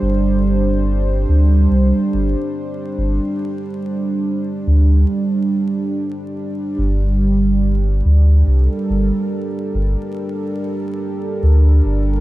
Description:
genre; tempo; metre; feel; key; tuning
ambient dub; 71 BPM; 4/4; swing 57% on 16ths; G minor; A4 = 441 Hz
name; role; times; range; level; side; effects
warm analog pad; sustained chords; 0.0-12.2 s; G3 to C5; -20 LUFS; right 2 dB; chorus
warm sub bass; bass; 0.0-12.2 s; G1 to D2; -14 LUFS; equal; none
room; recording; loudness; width
moderate lush hall reverb, RT60 2.6 s; dreamy mix soaked in reverb, vinyl crackle; -15 LUFS; side -16 dB against mid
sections
0.0-6.8 A section; 6.8-12.2 B section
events
break 5.1-6.8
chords
0.0 G5; 6.8 Gm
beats
| 0.02 0.87 1.71 2.56 | 3.40 4.25 5.09 5.94 | 6.78 7.63 8.47 9.32 | 10.16 11.01 11.85

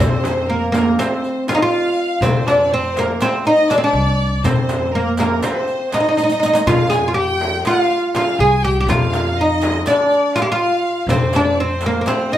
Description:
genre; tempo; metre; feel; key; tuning
Turkish makam ensemble; 243 BPM (eighths); 9/8; straight; F makam huseyni; A4 = 440 Hz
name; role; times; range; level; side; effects
oud; melody; 0.0-12.4 s; Bb3 to Ab4; -16 LUFS; equal; none
clear studio violin section; second line; 0.0-12.4 s; Bb4 to Ab5; -23 LUFS; equal; none
upright bass; bass; 0.0-12.0 s; C2 to F2; -22 LUFS; equal; none
frame drum; percussion; 0.0-12.2 s; none; -25 LUFS; equal; none
riq; percussion; 0.0-12.4 s; none; -31 LUFS; right 2 dB; none
darbuka; percussion; 0.2-12.2 s; none; -24 LUFS; left 2 dB; none
room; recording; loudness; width
wet large studio reverb, RT60 0.8 s; band playing live in one room; -14 LUFS; side -12 dB against mid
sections
0.0-12.4 A section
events
drum fill 6.2-6.7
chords
none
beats
0.24 0.49 0.73 0.98 1.23 1.48 1.72 1.97 | 2.22 2.46 2.71 2.96 3.21 3.45 3.70 3.95 4.20 | 4.44 4.69 4.93 5.18 5.43 5.68 5.92 6.17 6.42 | 6.66 6.91 7.16 7.40 7.65 7.89 8.14 8.39 8.63 | 8.88 9.12 9.37 9.62 9.86 10.11 10.36 10.60 10.85 | 11.09 11.34 11.58 11.83 12.08 12.32

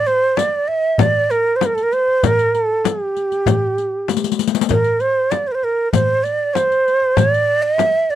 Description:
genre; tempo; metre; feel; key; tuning
Turkish makam ensemble; 97 BPM; 4/4; straight; D makam ussak; A4 = 440 Hz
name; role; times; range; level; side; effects
breathy shakuhachi; melody; 0.0-8.2 s; G4 to E5-30c; -16 LUFS; right 2 dB; none
riq; percussion; 0.1-7.9 s; none; -23 LUFS; left 14 dB; none
darbuka; percussion; 0.4-8.2 s; none; -22 LUFS; right 1 dB; none
frame drum; percussion; 0.4-7.9 s; none; -20 LUFS; left 8 dB; none
room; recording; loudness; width
little or no reverb; dry, close 1970s-style studio recording; -15 LUFS; side -12 dB against mid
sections
0.0-8.2 A section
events
drum fill 4.1-4.7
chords
none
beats
0.38 1.00 1.61 | 2.23 2.85 3.47 4.09 | 4.70 5.32 5.94 6.55 | 7.17 7.79

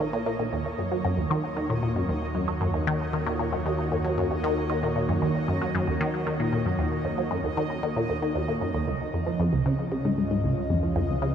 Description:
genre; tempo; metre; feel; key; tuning
ambient, sequencer-driven space music; 115 BPM; 4/4; straight; unclear; A4 = 438 Hz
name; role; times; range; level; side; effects
lush unison pad; sustained chords; 0.0-11.3 s; A#2 to C#5; -32 LUFS; right 1 dB; chorus, shimmer reverb
resonant blip pluck; riff; 0.0-11.3 s; C#2 to F#3; -26 LUFS; equal; phaser, analog delay, shimmer reverb
analog drone; bass; 0.0-11.3 s; A#1 to D#2; -35 LUFS; equal; chorus
bubbling stepped-filter texture; texture; 0.0-11.3 s; D#5; -38 LUFS; right 1 dB; chorus, built-in reverb, shimmer reverb
room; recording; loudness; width
moderate huge ambient reverb, RT60 7.9 s; none; -24 LUFS; side -8 dB against mid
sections
0.0-11.3 A section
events
fade-in on analog synth pad 0.0-11.3; fade-in on synth texture 0.0-11.3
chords
0.0 A#m; 0.5 D#m7; 8.9 C#7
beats
0.00 | 0.53 1.05 1.57 2.09 | 2.61 3.13 3.66 4.18 | 4.70 5.22 5.74 6.26 | 6.79 7.31 7.83 8.35 | 8.87 9.39 9.92 10.44 | 10.96

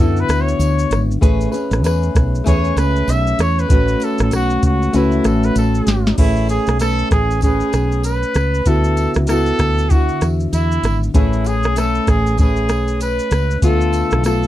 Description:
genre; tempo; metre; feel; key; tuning
indie pop, bedroom pop; 97 BPM; 4/4; swing 60% on 16ths; A major; A4 = 440 Hz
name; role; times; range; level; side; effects
clear trumpet; melody; 0.0-14.5 s; E4 to E5; -21 LUFS; equal; lush chorus, slapback echo
fingerpicked plugged-in steel-string acoustic guitar; accompaniment; 0.0-14.5 s; D3 to B4; -20 LUFS; left 1 dB; lush chorus, vibrato effect
woody fretless electric bass; bass; 0.0-14.5 s; G#1 to F#2; -18 LUFS; equal; none
soft vintage rhythm box; drums; 0.2-14.5 s; crash cymbal, hi-hat, kick drum, rim click, shaker, snare drum; -17 LUFS; equal; none
tambourine; percussion; 0.3-14.4 s; none; -40 LUFS; right 8 dB; none
room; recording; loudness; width
little or no reverb; dry, close 1970s-style studio recording; -14 LUFS; side -14 dB against mid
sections
0.0-6.2 A section; 6.2-14.5 B section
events
trumpet solo 0.0-6.2; drum fill 5.6-6.2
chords
0.0 D69; 1.2 Amaj9; 3.7 A69; 6.2 Amaj9; 8.7 D69; 11.1 Amaj9; 13.6 Dm6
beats
0.60 | 1.22 1.84 2.46 3.08 | 3.70 4.32 4.94 5.56 | 6.18 6.80 7.42 8.04 | 8.66 9.28 9.90 10.52 | 11.14 11.76 12.38 13.00 | 13.62 14.24

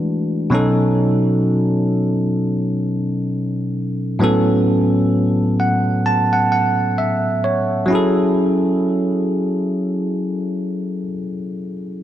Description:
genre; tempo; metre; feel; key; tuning
R&B; 65 BPM; 4/4; swing 58% on 16ths; F# minor; A4 = 440 Hz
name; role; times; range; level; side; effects
bell-like tine electric piano; solo; 0.0-12.0 s; A2 to A5; -16 LUFS; equal; lush chorus
room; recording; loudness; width
moderate lush hall reverb, RT60 2.8 s; dark, warm production; -16 LUFS; side -12 dB against mid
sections
0.5-7.9 A section; 7.9-11.6 B section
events
tine electric piano fill 5.1-7.9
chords
0.0 E9; 0.5 B9; 4.2 A69; 7.9 F#m7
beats
| 0.52 1.44 2.36 3.29 | 4.21 5.13 6.06 6.98 | 7.90 8.83 9.75 10.67

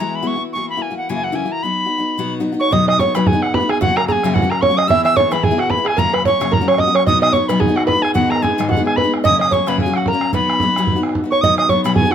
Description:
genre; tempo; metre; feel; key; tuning
celtic folk, Celtic reel; 221 BPM; 4/4; swing 58% on 8ths; B major; A4 = 440 Hz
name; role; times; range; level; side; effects
bright wooden whistle; melody; 0.0-12.1 s; F#5 to E6; -18 LUFS; equal; none
picked steel-string acoustic guitar; accompaniment; 0.0-12.1 s; F#2 to G#4; -20 LUFS; left 3 dB; none
open-back banjo; second line; 2.6-12.1 s; F#4 to E5; -19 LUFS; right 3 dB; none
bodhran; percussion; 2.7-12.1 s; none; -20 LUFS; right 3 dB; none
room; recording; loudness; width
light reverb; minimal, uncompressed stereo recording; -14 LUFS; side -9 dB against mid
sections
0.0-2.7 A section; 2.7-11.4 B section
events
none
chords
0.0 Eadd9; 0.5 F#7; 1.6 B; 3.8 F#; 4.9 E; 6.0 F#; 7.1 B; 8.2 G#m; 9.2 F#; 10.3 B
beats
0.00 0.27 | 0.54 0.82 1.09 1.36 | 1.64 1.91 2.18 2.46 | 2.73 3.00 3.27 3.54 | 3.81 4.08 4.36 4.63 | 4.90 5.17 5.44 5.71 | 5.98 6.25 6.53 6.80 | 7.07 7.34 7.61 7.88 | 8.15 8.43 8.70 8.97 | 9.24 9.51 9.78 10.06 | 10.33 10.60 10.87 11.14 | 11.42 11.69 11.96

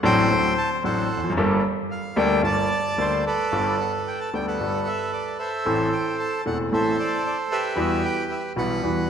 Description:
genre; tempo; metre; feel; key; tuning
tango; 113 BPM; 4/4; rubato; G minor, G major from 3.5 s; A4 = 440 Hz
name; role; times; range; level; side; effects
bandoneon; melody; 0.0-9.1 s; G4 to A5; -24 LUFS; right 2 dB; none
bright concert grand piano; accompaniment; 0.0-9.1 s; E1 to A4; -23 LUFS; left 1 dB; none
room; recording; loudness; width
wet concert hall reverb, RT60 1.9 s; minimal, uncompressed stereo recording; -21 LUFS; side -8 dB against mid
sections
0.0-3.5 A section; 3.5-9.1 B section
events
none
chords
0.0 D7; 1.4 Gmadd9; 3.5 Gadd9; 5.7 Am; 7.8 Emadd9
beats
0.30 0.83 | 1.36 1.90 2.44 2.98 | 3.53 4.07 4.60 5.13 | 5.66 6.19 6.72 7.24 | 7.77 8.30 8.83

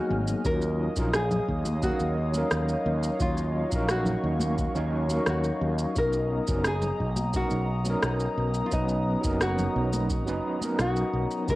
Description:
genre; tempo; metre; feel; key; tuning
sunset chillout; 87 BPM; 4/4; straight; unclear; A4 = 441 Hz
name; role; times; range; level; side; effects
nylon-string guitar; melody; 0.0-11.6 s; D#4 to Bb4; -32 LUFS; equal; cassette tape, analog delay
overdriven tine electric piano; accompaniment; 0.0-11.6 s; F3 to F5; -31 LUFS; moving between left 3 dB and right 3 dB; medium tremolo, auto-pan, low-pass filter, cassette tape
airy breathy pad; sustained chords; 0.0-11.6 s; B3 to F6; -34 LUFS; equal; chorus, cassette tape
fretless electric bass; bass; 0.1-11.6 s; F#1 to Eb2; -28 LUFS; equal; none
congas; percussion; 0.1-10.8 s; none; -36 LUFS; left 2 dB; none
electronic shaker and rim click; drums; 0.3-11.6 s; none; -32 LUFS; equal; overdrive
electronic kick drum; drums; 0.4-11.6 s; none; -32 LUFS; equal; overdrive
room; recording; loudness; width
moderate spring reverb, RT60 2.5 s; home recording on cassette; -24 LUFS; side -18 dB against mid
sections
0.0-11.6 A section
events
none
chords
0.4 Ebm9; 6.0 Bmaj7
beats
| 0.45 1.14 1.83 2.52 | 3.21 3.90 4.58 5.28 | 5.96 6.65 7.34 8.03 | 8.72 9.41 10.10 10.79 | 11.48

